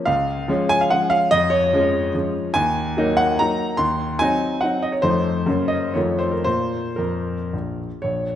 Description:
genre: classical, romantic triple-time dance for piano with dotted rhythms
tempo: 109-158 BPM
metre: 3/4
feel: rubato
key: Bb minor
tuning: A4 = 439 Hz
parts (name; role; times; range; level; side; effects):
- warm grand piano; solo; 0.0-8.4 s; Bb1 to C6; -18 LUFS; equal; none
room: wet scoring stage reverb, RT60 2.1 s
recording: recorded in a church or concert hall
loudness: -18 LUFS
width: side -10 dB against mid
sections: 0.0-8.0 A section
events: none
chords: 0.1 Db; 1.3 Db/F; 2.5 Ebm; 3.8 Cdim/Eb; 5.0 F7; 5.5 Gb; 6.0 F7; 6.5 Bb5

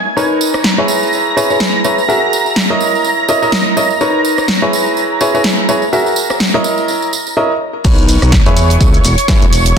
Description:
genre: piano house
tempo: 125 BPM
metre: 4/4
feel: swing 57% on 16ths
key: unclear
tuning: A4 = 444 Hz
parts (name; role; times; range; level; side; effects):
- analog string pad; sustained chords; 0.0-9.8 s; C#5 to A#6; -18 LUFS; right 2 dB; ensemble chorus, sidechain pumping
- clear upright piano; riff; 0.2-9.4 s; D#4 to E5; -14 LUFS; equal; sidechain pumping, ping-pong delay
- tambourine; percussion; 0.2-7.3 s; none; -22 LUFS; right 7 dB; none
- punchy analog drum machine; drums; 0.5-9.7 s; crash cymbal, hi-hat, rim click, shaker, snare drum; -16 LUFS; equal; none
- fat analog bass; bass; 7.8-9.7 s; E1 to C#2; -12 LUFS; equal; sidechain pumping
- electronic kick drum; drums; 7.8-9.4 s; none; -12 LUFS; equal; none
- tight metal drum kit; drums; 7.9-9.8 s; hi-hat, snare drum, tambourine; -24 LUFS; right 6 dB; high-pass filter on hats, high-pass filter on snare, high-pass filter on perc, high-pass filter on room
room: moderate digital room reverb, RT60 1.2 s, studio reverb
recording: dense, heavily limited modern master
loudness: -10 LUFS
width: side -7 dB against mid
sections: 0.0-7.8 A section; 7.8-9.8 B section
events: drop 7.8-9.8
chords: 0.2 Bmaj9; 0.9 E6; 2.1 F#9; 2.8 C#m69; 4.0 Bmaj9; 4.7 E6; 5.9 F#9; 6.6 C#m69; 7.8 Bmaj9; 8.6 E6

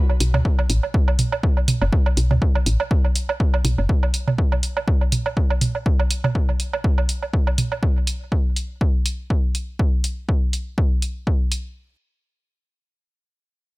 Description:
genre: minimal techno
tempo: 122 BPM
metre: 4/4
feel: swing 56% on 16ths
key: B minor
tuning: A4 = 440 Hz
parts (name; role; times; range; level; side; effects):
- electronic woodblock and toms; percussion; 0.1-7.8 s; none; -24 LUFS; right 3 dB; digital delay
- woody FM bass; bass; 0.2-3.9 s; F#1 to D2; -19 LUFS; equal; sidechain pumping
- electronic hi-hat; drums; 0.2-11.6 s; none; -26 LUFS; right 1 dB; none
- electronic kick drum; drums; 0.5-11.4 s; none; -19 LUFS; equal; none
room: digital ambience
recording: none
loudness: -18 LUFS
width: side -21 dB against mid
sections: 0.0-11.8 A section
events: none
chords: none

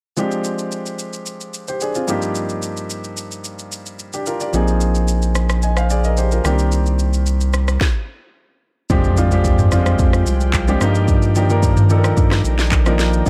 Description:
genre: amapiano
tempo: 110 BPM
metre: 4/4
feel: straight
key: F dorian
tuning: A4 = 441 Hz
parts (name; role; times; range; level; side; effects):
- warm grand piano; accompaniment; 0.2-13.3 s; G2 to Ab5; -23 LUFS; equal; none
- afro-pop drum kit; drums; 0.2-13.3 s; handclaps, kick drum, rim click, shaker, snare drum, toms; -22 LUFS; equal; none
- saturated sub bass; bass; 4.5-13.3 s; Bb1 to G2; -19 LUFS; equal; none
- glassy FM pad; sustained chords; 9.6-13.3 s; Eb3 to Ab5; -29 LUFS; equal; ensemble chorus, built-in reverb
- impact; sound effects; 8.9-11.1 s; none; -28 LUFS; equal; none
room: little or no reverb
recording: dark, warm production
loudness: -17 LUFS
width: mono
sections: 0.2-8.9 A section; 8.9-13.3 B section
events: stop 7.8-8.9; impact 8.9-11.1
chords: 0.2 Fm69; 2.1 Ebmaj7/G; 4.5 Bb9sus4; 6.4 Cm7; 8.9 Fm69; 10.8 Ebmaj7/G

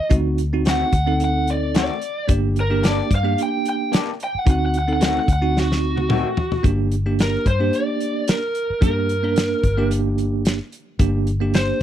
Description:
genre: straight-eighth soul blues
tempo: 110 BPM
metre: 4/4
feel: swing 55% on 16ths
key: G harmonic minor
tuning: A4 = 440 Hz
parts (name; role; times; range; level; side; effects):
- lead guitar through a small cranked amp; melody; 0.0-11.8 s; F#4 to G5; -23 LUFS; equal; overdrive
- vintage muted fingered electric bass; bass; 0.0-11.7 s; G1 to G2; -22 LUFS; left 1 dB; none
- bell-like tine electric piano; accompaniment; 0.1-11.8 s; Bb3 to Bb4; -23 LUFS; right 4 dB; fast stereo tremolo
- warm soul drum kit; drums; 0.1-11.7 s; hi-hat, kick drum, snare drum, toms; -20 LUFS; left 1 dB; none
- electric guitar through a small old amp; stabs; 0.7-6.3 s; Eb3 to G4; -25 LUFS; left 8 dB; vibrato effect
room: small room ambience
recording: dry, close 1970s-style studio recording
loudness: -18 LUFS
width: side -11 dB against mid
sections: 0.0-6.6 A section; 6.6-11.8 B section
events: lead electric guitar solo 0.0-6.6; drum fill 5.6-6.6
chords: 0.1 D7b9; 2.3 Gm; 4.5 D7b9; 6.6 Gm

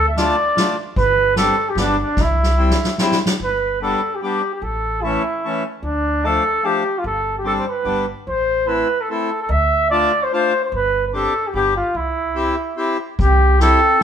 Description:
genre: alpine folk, alpine dance band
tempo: 147 BPM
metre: 3/4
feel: swing 54% on 8ths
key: C major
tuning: A4 = 441 Hz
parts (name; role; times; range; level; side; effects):
- warm flugelhorn; melody; 0.0-14.0 s; D4 to E5; -18 LUFS; right 1 dB; none
- upright bass; bass; 0.0-13.7 s; G1 to D2; -22 LUFS; equal; none
- accordion; accompaniment; 0.2-14.0 s; E3 to G4; -22 LUFS; left 2 dB; none
- soft-mallet drum kit; drums; 0.2-3.4, 13.2-14.0 s; kick drum, ride cymbal, snare drum; -22 LUFS; equal; none
- mellow clarinet; second line; 13.2-14.0 s; C4; -21 LUFS; right 4 dB; none
room: moderate stone room reverb, RT60 1.0 s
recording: band playing live in one room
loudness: -16 LUFS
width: side -8 dB against mid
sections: 0.0-3.4 A section; 3.4-13.2 A section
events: drum fill 2.2-3.4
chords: 0.0 Dm; 1.0 Gsus4; 1.8 G; 2.2 C; 3.4 G; 4.6 A; 5.8 Dm; 7.0 Gsus4; 7.9 G; 8.3 Am; 9.5 Dm; 10.7 Gsus4; 11.5 G; 11.9 C

